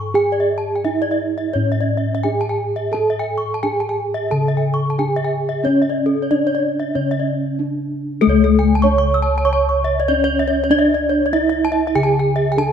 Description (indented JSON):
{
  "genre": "Balinese gamelan",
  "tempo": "86-96 BPM",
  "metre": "4/4",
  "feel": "straight",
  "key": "C# pelog",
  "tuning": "A4 = 441 Hz",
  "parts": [
    { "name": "gamelan-type bronze metallophone", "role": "melody", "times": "0.0-12.7 s", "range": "A3-40c to C#5", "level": "-19 LUFS", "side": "right 2 dB", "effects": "none" },
    { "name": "gamelan-type bronze metallophone", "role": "arpeggios", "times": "0.0-12.7 s", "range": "A4-40c to E6-50c", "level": "-21 LUFS", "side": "left 3 dB", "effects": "none" },
    { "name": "gamelan-type bossed gongs", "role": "bass", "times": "0.0-12.7 s", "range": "C#2 to A4-40c", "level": "-21 LUFS", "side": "equal", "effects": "none" }
  ],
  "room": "moderate scoring stage reverb, RT60 1.4 s",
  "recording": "none",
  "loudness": "-16 LUFS",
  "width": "side -8 dB against mid",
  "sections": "0.0-8.2 A section; 8.2-12.7 B section",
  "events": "break 7.3-8.2",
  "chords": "none",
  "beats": "| 0.15 0.85 1.55 2.24 | 2.94 3.63 4.32 4.99 | 5.65 6.30 6.95 7.58 | 8.21 8.84 9.46 10.08 | 10.70 11.33 11.95 12.57"
}